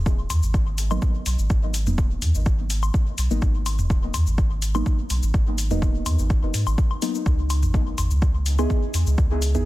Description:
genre	dub techno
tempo	125 BPM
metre	4/4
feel	straight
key	G# minor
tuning	A4 = 440 Hz
part	warm sub bass	bass	0.0-9.7 s	D#1 to G#2	-23 LUFS	equal	sidechain pumping
part	electronic kick drum	drums	0.1-9.3 s	none	-21 LUFS	equal	overdrive
part	electronic shaker and hi-hat	drums	0.1-9.6 s	none	-32 LUFS	left 2 dB	overdrive
part	electronic toms and woodblock	percussion	0.3-9.6 s	none	-30 LUFS	left 1 dB	overdrive, sidechain pumping on perc, sidechain pumping on toms, dub echo
part	deep mellow chord stab	stabs	0.9-9.7 s	F#3 to G#4	-30 LUFS	equal	chorus, phaser, sidechain pumping, dub echo
room	digital ambience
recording	dense, heavily limited modern master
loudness	-20 LUFS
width	side -17 dB against mid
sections	0.0-9.7 A section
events	filter sweep on synth stab 0.0-9.7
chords	0.0 G#m9; 7.3 C#m9

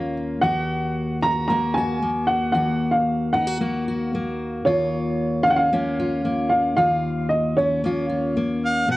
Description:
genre	acoustic folk duo or small band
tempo	114 BPM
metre	4/4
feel	straight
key	unclear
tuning	A4 = 445 Hz
part	dark upright piano	melody	0.0-8.6 s	Db5 to Bb5	-22 LUFS	right 1 dB	plate reverb
part	fingerpicked steel-string acoustic guitar	accompaniment	0.0-9.0 s	Eb2 to Gb4	-23 LUFS	left 1 dB	plate reverb
part	warm harmonica	second line	8.6-9.0 s	F5 to F#5	-20 LUFS	right 1 dB	none
room	wet studio ambience, RT60 0.5 s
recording	worn, warbling old tape, cassette tape, warbly pitch drift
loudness	-20 LUFS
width	side -18 dB against mid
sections	0.0-8.9 A section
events	none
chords	0.4 Ebm; 4.7 Bbm/Eb

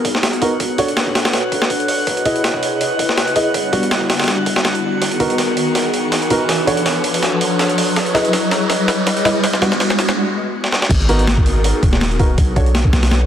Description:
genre	drum and bass, jungle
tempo	163 BPM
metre	4/4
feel	swing 54% on 16ths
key	G# minor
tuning	A4 = 440 Hz
part	airy breathy pad	sustained chords	0.0-13.3 s	G3 to D#5	-21 LUFS	left 1 dB	chorus
part	breakbeat sampler-style drum kit	drums	0.0-13.2 s	crash cymbal, hi-hat, kick drum, snare drum	-18 LUFS	equal	high-pass filter on hats, high-pass filter on snare, high-pass filter on kick, high-pass filter on cymbals
part	riser	sound effects	1.1-10.2 s	none	-23 LUFS	equal	none
part	drifting glass-harmonics texture	texture	0.0-13.3 s	F#5	-27 LUFS	right 1 dB	chorus, built-in reverb
part	dark grand piano	stabs	0.4-12.6 s	G3 to D#5	-21 LUFS	equal	low-pass filter, dub echo
part	warm 808-style bass	bass	10.9-13.3 s	D#1 to B1	-16 LUFS	equal	none
room	moderate lush hall reverb, RT60 2.1 s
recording	dense, heavily limited modern master, vinyl crackle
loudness	-14 LUFS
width	side -10 dB against mid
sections	0.0-10.9 A section; 10.9-13.3 B section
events	build-up 0.0-10.9; riser 1.1-10.2; drum fill 5.0-10.2, 10.6; break 10.2-10.9; drop 10.9-13.3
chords	0.0 G#m7; 0.6 Bm7; 2.1 C#m7; 3.5 Em7; 5.0 G#m7; 6.5 Bm7; 8.0 C#m7; 9.4 Em7; 10.9 G#m7; 12.4 Bm7

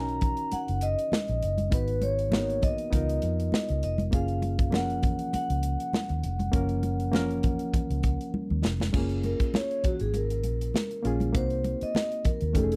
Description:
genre	lush 1970s-style soul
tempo	100 BPM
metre	4/4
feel	swing 54% on 16ths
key	F# major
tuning	A4 = 440 Hz
part	vibraphone with soft mallets	melody	0.0-12.8 s	F#4 to A#5	-34 LUFS	equal	slapback echo
part	reed electric piano	accompaniment	0.0-12.8 s	E#3 to B4	-35 LUFS	equal	none
part	vintage muted fingered electric bass	bass	0.0-12.8 s	E#1 to E#2	-32 LUFS	equal	none
part	modern studio drum kit	drums	0.1-12.8 s	crash cymbal, hi-hat, kick drum, snare drum	-31 LUFS	equal	none
part	congas	percussion	0.2-12.7 s	none	-37 LUFS	equal	none
room	light reverb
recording	dry, close 1970s-style studio recording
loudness	-28 LUFS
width	mono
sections	0.0-8.9 A section; 8.9-12.8 B section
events	drum fill 8.3-8.9; vibraphone solo 8.9-12.8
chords	0.0 Bmaj9; 1.7 G#m7; 2.9 C#13; 4.1 F#maj7; 11.3 Cm7b5

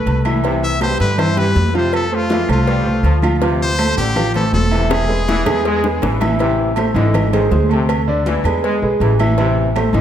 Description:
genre	latin, salsa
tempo	161 BPM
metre	4/4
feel	straight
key	unclear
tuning	A4 = 440 Hz
part	brilliant trumpet	melody	0.0-6.0 s	F4 to E5	-22 LUFS	left 2 dB	none
part	bright concert grand piano	accompaniment	0.0-10.0 s	D3 to F5	-19 LUFS	right 1 dB	none
part	upright bass	bass	0.0-10.0 s	E1 to G2	-18 LUFS	equal	none
part	agogo bells and timbales	percussion	0.1-9.9 s	none	-27 LUFS	right 7 dB	none
part	congas	percussion	0.1-10.0 s	none	-25 LUFS	equal	none
part	cowbell and bongos	percussion	0.1-10.0 s	none	-27 LUFS	left 2 dB	none
part	claves	percussion	0.3-9.9 s	none	-34 LUFS	left 4 dB	none
part	bright trombone section	second line	0.4-10.0 s	C3 to G#3	-25 LUFS	left 2 dB	none
room	moderate recital hall reverb, RT60 1.7 s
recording	none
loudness	-13 LUFS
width	side -10 dB against mid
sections	0.0-6.4 A section; 6.4-10.0 B section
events	drum fill 4.9-6.4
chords	0.4 Cmaj7; 1.9 F; 3.4 Dm7; 4.9 E; 6.4 G#; 7.9 Dsus2; 8.6 E; 9.4 G#

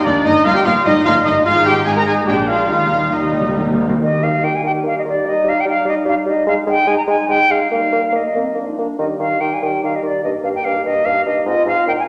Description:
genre	quick classical-period movement for symphony orchestra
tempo	146 BPM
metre	3/4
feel	rubato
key	Eb major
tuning	A4 = 435 Hz
part	warm symphonic violin section	melody	0.0-3.6 s	D4 to Bb4	-27 LUFS	equal	none
part	bright concert flute	second line	0.0-12.0 s	D5 to Bb5	-20 LUFS	equal	none
part	rich chamber violin section	second line	0.0-3.6 s	D5 to Bb5	-27 LUFS	equal	none
part	mellow French horn section	sustained chords	0.0-12.1 s	F3 to F4	-29 LUFS	equal	none
part	bright trumpet section	stabs	0.0-3.6 s	D5 to Bb5	-21 LUFS	equal	none
part	rich chamber double bass section	bass	0.0-3.8 s	G1 to Eb2	-32 LUFS	equal	none
part	dark clarinet	second line	0.1-12.1 s	Bb3 to Bb4	-25 LUFS	equal	none
part	warm chamber viola section	accompaniment	0.1-3.8 s	G3 to Eb4	-24 LUFS	equal	none
part	dark chamber cello section	bass	0.1-3.8 s	Eb2 to Bb2	-28 LUFS	equal	none
part	timpani	percussion	2.7-4.0 s	Eb3	-22 LUFS	equal	none
part	mellow bassoon	accompaniment	4.0-12.0 s	G2 to Bb3	-23 LUFS	equal	none
room	wet scoring stage reverb, RT60 1.6 s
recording	none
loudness	-16 LUFS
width	mono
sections	0.0-4.0 A section; 4.0-12.1 A section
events	timpani fill 2.7-4.0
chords	0.2 Eb/G; 1.5 Fm11/Ab; 2.3 Bb7; 2.7 Eb; 5.3 Eb/G; 6.5 Fm9/Ab (rootless); 7.7 Eb/G; 8.6 Bb/F; 9.0 Eb; 10.2 Eb/G; 11.5 Fm7/Ab

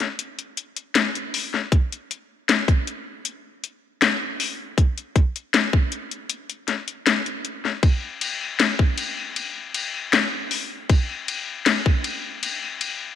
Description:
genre	blues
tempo	78 BPM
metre	4/4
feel	straight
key	none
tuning	none
part	garage drum kit	drums	0.0-13.0 s	hi-hat, kick drum, ride cymbal, snare drum	-20 LUFS	left 2 dB	none
room	light reverb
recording	1960s-style stereo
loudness	-21 LUFS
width	side -10 dB against mid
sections	0.0-7.8 A section; 7.8-13.2 A section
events	none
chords	none

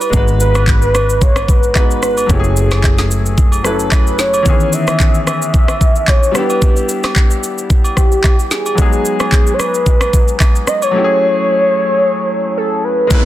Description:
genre	amapiano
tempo	111 BPM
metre	4/4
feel	swing 55% on 16ths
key	unclear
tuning	A4 = 436 Hz
part	warm velvety synth lead	melody	0.0-13.2 s	G4 to E5	-16 LUFS	equal	chorus, tape echo
part	bright grand piano	accompaniment	0.0-13.2 s	D#3 to B4	-19 LUFS	left 3 dB	none
part	smooth R&B drum kit	drums	0.0-13.2 s	handclaps, kick drum, rim click, shaker, snare drum	-12 LUFS	equal	soft clipping on snare
part	agogo bells and woodblock	percussion	0.0-10.9 s	none	-25 LUFS	right 3 dB	none
part	fingered electric bass	bass	0.1-4.4 s	F#1 to G#1	-16 LUFS	equal	none
part	downlifter	sound effects	13.1-13.2 s	none	-19 LUFS	left 1 dB	none
room	light reverb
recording	dense, heavily limited modern master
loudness	-11 LUFS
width	side -14 dB against mid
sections	0.0-13.1 A section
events	none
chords	0.1 G#m7; 2.3 F#m9; 4.5 C#m9; 6.3 Em7; 8.8 G#m7; 10.9 F#m9

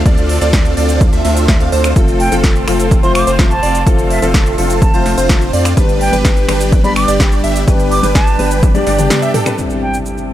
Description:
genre	EDM, festival progressive house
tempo	126 BPM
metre	4/4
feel	straight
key	unclear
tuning	A4 = 444 Hz
part	lush unison pad	sustained chords	0.0-10.3 s	C3 to E5	-24 LUFS	left 1 dB	chorus, sidechain pumping
part	saturated sub bass	bass	0.0-9.1 s	F1 to F2	-18 LUFS	equal	sidechain pumping
part	plucky unison lead	arpeggios	0.1-9.6 s	A4 to F5	-21 LUFS	right 1 dB	sidechain pumping, tape echo
part	big supersaw lead	riff	0.1-9.6 s	C4 to F5	-19 LUFS	right 1 dB	phaser, sidechain pumping, tape echo
part	big-room dance drum kit	drums	0.1-10.3 s	finger snaps, hi-hat, shaker, snare drum, toms	-20 LUFS	equal	none
part	electronic kick drum	drums	0.1-8.7 s	none	-12 LUFS	equal	none
part	dark baby grand piano	accompaniment	2.0-10.3 s	G2 to B4	-20 LUFS	left 4 dB	sidechain pumping
part	concert flute	melody	2.2-10.0 s	E5 to D6	-20 LUFS	right 2 dB	tape echo
part	impact	sound effects	9.6-10.3 s	none	-23 LUFS	equal	none
room	little or no reverb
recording	none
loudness	-10 LUFS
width	side -13 dB against mid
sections	0.0-9.6 A section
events	drop 0.0-9.6; drum fill 8.6-9.6; impact 9.6-10.3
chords	0.0 Dm7; 2.0 F; 5.8 G; 9.6 Cadd9

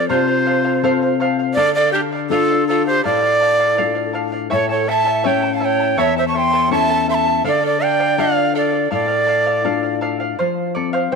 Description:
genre	andean folk, Andean ensemble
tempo	82 BPM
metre	2/4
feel	straight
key	D minor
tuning	A4 = 441 Hz
part	breathy bright quena	melody	0.0-10.0 s	G4 to C#6	-18 LUFS	right 1 dB	none
part	breathy bright pan flute	second line	0.0-10.0 s	D4 to A5	-22 LUFS	right 12 dB	none
part	charango	accompaniment	0.0-11.2 s	E4 to A5	-23 LUFS	right 2 dB	none
part	nylon-string guitar	accompaniment	0.0-11.2 s	E2 to A4	-21 LUFS	left 12 dB	none
room	moderate echo chamber reverb, RT60 2.1 s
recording	1960s-style stereo with parts hard left and right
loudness	-15 LUFS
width	side -4 dB against mid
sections	0.0-10.4 A section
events	none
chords	0.0 F; 1.6 Dm; 4.5 A; 7.4 Dm; 10.4 F

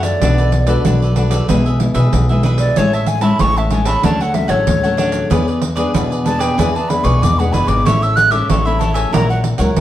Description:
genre	samba and choro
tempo	94 BPM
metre	4/4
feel	straight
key	A major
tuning	A4 = 440 Hz
part	wooden flute	melody	0.0-9.4 s	C#5 to F#6	-18 LUFS	equal	none
part	cavaquinho	accompaniment	0.0-9.8 s	D4 to A5	-23 LUFS	right 1 dB	none
part	nylon-string guitar	accompaniment	0.0-9.8 s	A2 to C#5	-20 LUFS	left 2 dB	none
part	upright bass	bass	0.0-9.8 s	F#1 to F#2	-17 LUFS	equal	none
part	pandeiro	percussion	0.0-9.8 s	none	-20 LUFS	right 3 dB	none
room	wet studio reverb, RT60 0.8 s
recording	heard from further back in the room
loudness	-12 LUFS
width	side -13 dB against mid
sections	0.0-9.8 A section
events	flute solo 0.0-9.8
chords	0.2 Bm7; 1.5 E/B; 2.8 Amaj7; 4.0 Dmaj7; 5.3 E7; 7.9 A; 9.1 F#7/A#

